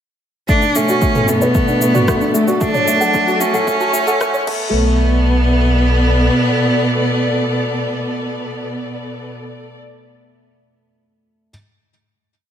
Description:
piano and strings electronica; 113 BPM; 4/4; straight; B minor; A4 = 440 Hz
rich cello; melody; 0.5-9.3 s; A3 to D4; -18 LUFS; right 1 dB
dark chamber string section; sustained chords; 0.5-9.7 s; B2 to D5; -21 LUFS; left 1 dB; sidechain pumping
felt-muted upright piano; riff; 0.5-11.5 s; A3 to F#5; -19 LUFS; equal; digital delay
warm sub bass; bass; 0.5-6.3 s; B1; -15 LUFS; equal; sidechain pumping, high-pass filter
deep house drum kit; drums; 0.5-4.6 s; crash cymbal, rim click, shaker, toms; -23 LUFS; equal; overdrive
electronic kick drum; drums; 0.5-4.6 s; -19 LUFS; equal; overdrive
soft round pluck; arpeggios; 0.6-5.0 s; A4 to A5; -28 LUFS; right 2 dB; chorus, cassette tape, sidechain pumping, digital delay
moderate concert hall reverb, RT60 2.1 s; high-pass filter; -13 LUFS; side -9 dB against mid
0.5-4.7 build; 4.7-9.0 final chord
build-up 0.5-4.7; filter sweep on synth arpeggio sound 0.5-4.7
0.5 Bm7; 2.6 F#m; 4.5 Asus2/B; 4.7 Bm7

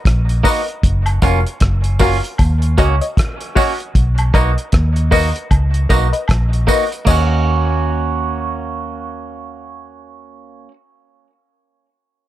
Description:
roots reggae; 77 BPM; 4/4; swing 58% on 16ths; Eb minor; A4 = 440 Hz
vintage muted fingered electric bass; bass; 0.1-10.7 s; F1 to Eb2; -16 LUFS; equal
cloth-damped thuddy drum kit; drums; 0.1-7.3 s; crash cymbal, hi-hat, kick drum, rim click; -16 LUFS; equal
twangy electric guitar; accompaniment; 0.4-10.7 s; A#3 to F#4; -21 LUFS; right 5 dB; tape echo
filtered dub chord stab; stabs; 0.4-10.7 s; Gb4 to F5; -22 LUFS; left 7 dB; chorus
tambourine and woodblock; percussion; 0.4-7.4 s; -27 LUFS; right 1 dB
small room ambience; -13 LUFS; side -14 dB against mid
0.0-7.1 A section; 7.1-10.2 B section
0.0 Bmaj7; 0.8 Gbmaj7; 2.4 Ebm7; 4.0 Bmaj7; 7.1 Ebm7

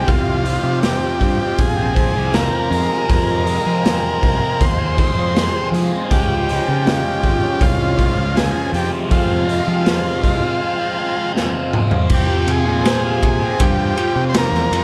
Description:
psychedelic rock; 80 BPM; 4/4; straight; F minor; A4 = 440 Hz
combo organ; melody; 0.0-14.8 s; F4 to C5; -24 LUFS; equal; tape echo
hand-pumped harmonium; sustained chords; 0.0-14.8 s; Ab3 to G5; -32 LUFS; equal
crunchy overdriven guitar; riff; 0.0-14.8 s; F2 to Ab4; -24 LUFS; equal; phaser
fuzz fingered electric bass; bass; 0.0-14.8 s; Ab1 to F3; -24 LUFS; equal; overdrive
raw garage drum kit; drums; 0.1-14.8 s; crash cymbal, hi-hat, kick drum, ride cymbal, snare drum, toms; -21 LUFS; equal
studio ambience; -17 LUFS; mono
0.0-12.1 A section; 12.1-14.8 B section
drum fill 11.4-12.1
0.1 Csus4; 2.7 Fm; 6.1 Db; 8.7 Fm; 12.1 Csus4

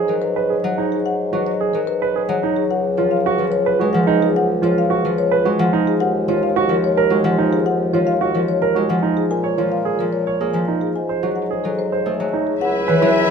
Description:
classical, minimalist pattern music; 109 BPM; 3/4; straight; G# dorian; A4 = 439 Hz
concert harp; accompaniment; 0.0-13.3 s; E3 to A#3; -21 LUFS; left 2 dB
warm grand piano; arpeggios; 0.0-13.2 s; D#4 to C#5; -21 LUFS; right 9 dB
mellow bassoon; bass; 0.0-13.3 s; C#2 to A#2; -23 LUFS; right 1 dB
marimba with medium mallets; melody; 0.1-13.2 s; G#4 to G#5; -23 LUFS; left 7 dB
warm oboe; second line; 12.6-13.3 s; E4; -24 LUFS; right 2 dB
rich studio string section; sustained chords; 12.6-13.3 s; B4 to E5; -22 LUFS; left 7 dB
moderate large studio reverb, RT60 1.2 s; minimal, uncompressed stereo recording; -16 LUFS; side -6 dB against mid
0.0-12.6 A section
0.0 G#m7; 2.7 C#sus4; 6.0 D#m11; 9.3 A#m7; 11.0 G#7b9; 12.6 C#m7

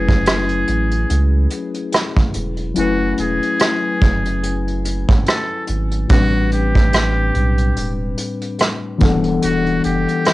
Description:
lo-fi hip hop; 72 BPM; 4/4; swing 56% on 16ths; A4 = 440 Hz
trumpet with metal mute; melody; 0.0-10.3 s; F#4 to A4; -23 LUFS; right 1 dB; tape echo
muted felt-like synth keys; accompaniment; 0.0-10.3 s; A2 to G#5; -20 LUFS; left 4 dB; chorus, cassette tape
warm sub bass; bass; 0.0-10.1 s; E1 to C#2; -19 LUFS; right 1 dB; transformer saturation
vintage brush drum kit; drums; 0.1-10.3 s; hi-hat, kick drum, rim click; -17 LUFS; right 1 dB; vintage 12-bit sampler grit, cassette tape
light reverb; home recording on cassette; -15 LUFS; side -18 dB against mid
0.0-10.3 A section
0.0 F#m11; 6.1 Am11; 9.0 Em11

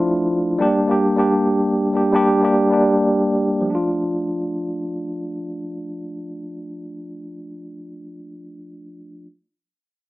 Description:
hip hop; 156 BPM; 4/4; half-time; A4 = 441 Hz
mellow tine electric piano; accompaniment; 0.0-9.3 s; F3 to G4; -19 LUFS; equal; medium stereo tremolo
moderate studio reverb, RT60 0.6 s; rough home demo mix, small speaker sound; -17 LUFS; side -18 dB against mid
0.0-3.7 A section; 3.7-6.8 B section
0.0 Dm; 0.6 Gm; 3.7 Dm

